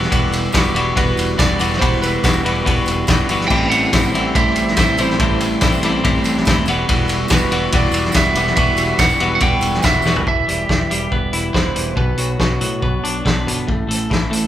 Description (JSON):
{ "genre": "indie rock", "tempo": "142 BPM", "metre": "4/4", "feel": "straight", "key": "E minor", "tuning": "A4 = 440 Hz", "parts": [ { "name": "twelve-string electric guitar", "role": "riff", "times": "0.0-14.5 s", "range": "A2 to F#4", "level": "-19 LUFS", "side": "equal", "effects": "none" }, { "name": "fuzz fingered electric bass", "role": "bass", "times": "0.0-14.5 s", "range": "E1 to A2", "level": "-24 LUFS", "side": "equal", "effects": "overdrive" }, { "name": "loose indie drum kit", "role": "drums", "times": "0.0-14.4 s", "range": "crash cymbal, hi-hat, kick drum, ride cymbal, snare drum, toms", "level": "-18 LUFS", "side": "equal", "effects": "none" }, { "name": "tambourine", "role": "percussion", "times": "0.3-10.1 s", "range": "none", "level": "-35 LUFS", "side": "right 6 dB", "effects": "none" }, { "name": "lightly driven lead guitar", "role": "melody", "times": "0.6-13.4 s", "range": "F#4 to G5", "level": "-21 LUFS", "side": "right 3 dB", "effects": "none" }, { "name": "phased string machine", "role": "sustained chords", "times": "3.5-10.2 s", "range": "G3 to C5", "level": "-33 LUFS", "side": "right 2 dB", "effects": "none" } ], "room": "light reverb", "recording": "band playing live in one room", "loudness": "-14 LUFS", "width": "side -12 dB against mid", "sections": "0.0-10.3 A section; 10.3-14.5 B section", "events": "drum fill 10.1", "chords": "0.0 Emadd9; 3.5 Am7; 6.7 Emadd9; 10.3 Em; 12.0 Bm; 13.7 A5", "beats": "| 0.12 0.54 0.97 1.39 | 1.81 2.24 2.66 3.08 | 3.50 3.93 4.35 4.77 | 5.19 5.62 6.04 6.46 | 6.88 7.30 7.73 8.15 | 8.57 8.99 9.42 9.84 | 10.27 10.69 11.12 11.54 | 11.97 12.39 12.82 13.25 | 13.68 14.10" }